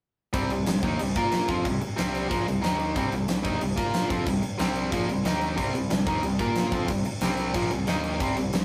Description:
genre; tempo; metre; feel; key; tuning
punk rock; 183 BPM; 4/4; straight; C minor; A4 = 440 Hz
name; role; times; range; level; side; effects
distorted electric guitar; riff; 0.3-8.6 s; Bb2 to Bb4; -30 LUFS; equal; overdrive
overdriven semi-hollow guitar; riff; 0.3-8.6 s; Bb2 to Bb4; -36 LUFS; equal; none
fuzz picked electric bass; bass; 0.3-8.6 s; Bb1 to Bb2; -37 LUFS; equal; overdrive
big rock drum kit; drums; 0.3-8.6 s; crash cymbal, kick drum, snare drum; -31 LUFS; equal; none
room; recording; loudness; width
wet studio reverb, RT60 0.6 s; rough rehearsal-room recording; -26 LUFS; mono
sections
0.3-8.6 A section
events
none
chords
0.3 Cm; 1.2 Bb5; 1.5 C5; 2.6 Eb5; 3.0 Cm; 3.8 Bb5; 4.1 C5; 5.3 Eb5; 5.6 Cm; 6.4 Bb5; 6.7 C5; 7.9 Eb5

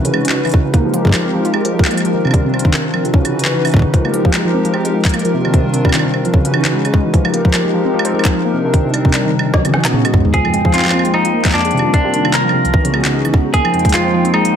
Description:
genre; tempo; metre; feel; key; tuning
IDM; 150 BPM; 4/4; swing 56% on 16ths; unclear; A4 = 441 Hz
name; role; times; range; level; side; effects
hollow soft pad; sustained chords; 0.0-14.6 s; Eb3 to G5; -18 LUFS; left 1 dB; chorus
warbly dusty pluck; arpeggios; 0.0-14.6 s; C2 to F4; -17 LUFS; equal; chorus, ping-pong delay
organic electronic drum kit; drums; 0.0-14.5 s; handclaps, hi-hat, snare drum, toms, woodblock; -20 LUFS; right 1 dB; none
electronic kick drum; drums; 0.5-13.9 s; none; -13 LUFS; equal; none
semi-hollow electric guitar; melody; 10.3-14.6 s; D4 to Bb4; -16 LUFS; equal; ping-pong delay
room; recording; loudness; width
moderate echo chamber reverb, RT60 1.5 s; none; -12 LUFS; side -8 dB against mid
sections
0.0-14.6 A section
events
drum fill 9.5-10.3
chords
0.0 Dbm11; 0.7 Fm11; 2.1 Cm11; 3.1 Dbm11; 3.9 Fm11; 5.3 Cm11; 6.3 Dbm11; 7.1 Fm11; 8.5 Cm11; 9.5 Dbm11; 10.3 Fm11; 11.7 Cm11; 12.7 Dbm11; 13.5 Fm11

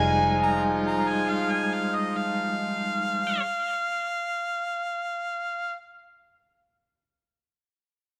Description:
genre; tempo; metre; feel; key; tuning
blues; 92 BPM; 4/4; swing 55% on 16ths; F minor; A4 = 438 Hz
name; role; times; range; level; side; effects
crunchy overdriven guitar; melody; 0.0-3.4 s; Ab5; -29 LUFS; equal; tape echo
overdriven tine electric piano; accompaniment; 0.0-3.4 s; G3 to Eb4; -32 LUFS; equal; fast tremolo
bright horn section; sustained chords; 0.0-3.4 s; F3 to F4; -36 LUFS; equal; none
direct-recorded clean electric guitar; stabs; 0.0-3.5 s; F3 to Eb4; -35 LUFS; equal; none
fingered electric bass; bass; 0.0-3.4 s; F1; -34 LUFS; equal; none
clear harmonica; second line; 0.4-5.7 s; Eb5 to Bb5; -30 LUFS; equal; overdrive
room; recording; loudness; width
moderate echo chamber reverb, RT60 1.7 s, studio ambience; none; -27 LUFS; mono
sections
0.0-5.0 A section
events
none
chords
0.0 Fm9

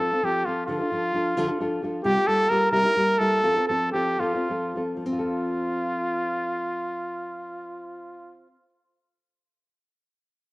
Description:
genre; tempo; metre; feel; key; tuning
mexican folk, mariachi; 68-90 BPM (dotted quarters); 6/8; rubato; F major; A4 = 440 Hz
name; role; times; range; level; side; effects
warm trumpet; melody; 0.0-8.4 s; F4 to Bb4; -24 LUFS; equal; none
nylon-string guitar; accompaniment; 0.0-8.7 s; C3 to A4; -27 LUFS; left 1 dB; cassette tape
room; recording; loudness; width
wet spring reverb, RT60 1.6 s, small room ambience; home recording on cassette; -22 LUFS; side -21 dB against mid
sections
0.0-5.0 A section; 5.0-8.5 B section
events
slowing down 2.0-5.0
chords
0.0 F; 0.7 Dm; 2.0 C7sus4; 2.7 C7; 3.4 F

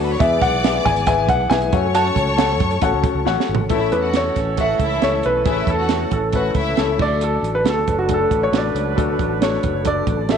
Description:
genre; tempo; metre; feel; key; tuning
uptempo 1960s-style soul; 136 BPM; 4/4; straight; A major; A4 = 440 Hz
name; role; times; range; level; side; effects
clear studio string section; second line; 0.0-7.0 s; E4 to D6; -26 LUFS; left 2 dB; none
warm upright piano; accompaniment; 0.0-10.4 s; A3 to F#5; -23 LUFS; left 11 dB; none
tonewheel organ; sustained chords; 0.0-10.4 s; D3 to A4; -28 LUFS; right 1 dB; slow rotary speaker, chorus vibrato
fingered electric bass; bass; 0.0-10.4 s; F#1 to F#2; -24 LUFS; right 1 dB; none
warm concert grand piano; melody; 0.2-10.4 s; F#4 to A5; -21 LUFS; equal; tape echo
compact cocktail drum kit; drums; 0.2-10.4 s; crash cymbal, hi-hat, kick drum, snare drum, toms; -22 LUFS; right 5 dB; vintage 12-bit sampler grit
warm horn section; second line; 1.9-10.3 s; E3 to C#5; -28 LUFS; right 12 dB; none
room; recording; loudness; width
light reverb; 1960s-style stereo with parts hard left and right; -16 LUFS; side -7 dB against mid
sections
0.0-3.7 A section; 3.7-10.4 B section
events
band accent 2.0-3.7; drum fill 3.3-3.7; grand piano solo 3.7-10.4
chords
0.2 E; 1.7 F#m; 3.7 A; 7.0 D

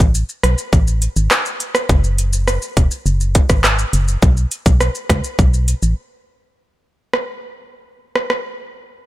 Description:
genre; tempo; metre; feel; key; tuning
dancehall; 103 BPM; 4/4; straight; F# minor; A4 = 440 Hz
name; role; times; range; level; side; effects
organ-like FM bass; bass; 0.0-5.9 s; E1 to C#2; -16 LUFS; equal; none
island pop drum kit; drums; 0.0-8.4 s; handclaps, hi-hat, kick drum, rim click, shaker; -16 LUFS; equal; overdrive
room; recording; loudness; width
little or no reverb; none; -14 LUFS; side -16 dB against mid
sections
0.0-6.6 A section; 6.6-9.1 B section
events
break 6.0-6.6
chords
none

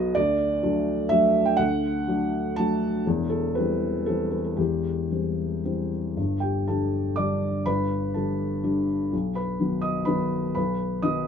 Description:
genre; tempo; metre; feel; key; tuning
neoclassical minimalist piano; 111-127 BPM; 3/4; rubato; G major; A4 = 441 Hz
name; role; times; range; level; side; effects
felt-muted upright piano; solo; 0.0-11.3 s; E1 to D#6; -23 LUFS; equal; none
room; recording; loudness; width
light reverb; minimal, uncompressed stereo recording; -23 LUFS; side -7 dB against mid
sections
0.0-6.2 A section; 6.2-11.3 A section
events
none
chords
0.2 D; 3.1 C/E; 6.2 Gsus2; 9.1 B

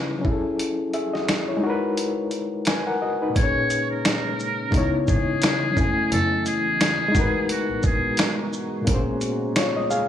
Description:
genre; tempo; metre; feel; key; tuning
lo-fi hip hop; 87 BPM; 4/4; swing 57% on 16ths; Bb phrygian; A4 = 440 Hz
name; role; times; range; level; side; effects
barky reed electric piano; accompaniment; 0.0-10.1 s; Bb2 to Ab5; -24 LUFS; left 2 dB; overdrive, fast tremolo, cassette tape, low-pass filter
dusty soul sampler-style drum kit; drums; 0.2-10.1 s; finger snaps, hi-hat, kick drum, shaker, snare drum; -24 LUFS; equal; none
deep dark ambient pad; sustained chords; 3.9-10.1 s; Db3 to Bb5; -32 LUFS; right 1 dB; chorus, built-in reverb, low-pass filter
trumpet with metal mute; melody; 3.4-8.4 s; Gb4 to Db5; -25 LUFS; equal; low-pass filter
rich double bass; bass; 3.4-9.0 s; Gb1 to Db2; -28 LUFS; right 1 dB; none
room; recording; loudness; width
light reverb; dry, gritty hardware recording, studio reverb; -20 LUFS; side -10 dB against mid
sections
0.0-3.4 A section; 3.4-10.1 B section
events
kick muted 0.6-3.4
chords
0.2 Gbm9; 1.6 Abm9; 3.4 Bbm7; 4.7 Dbm9; 5.8 Gbm9; 7.1 Abm9; 8.9 Bbm9

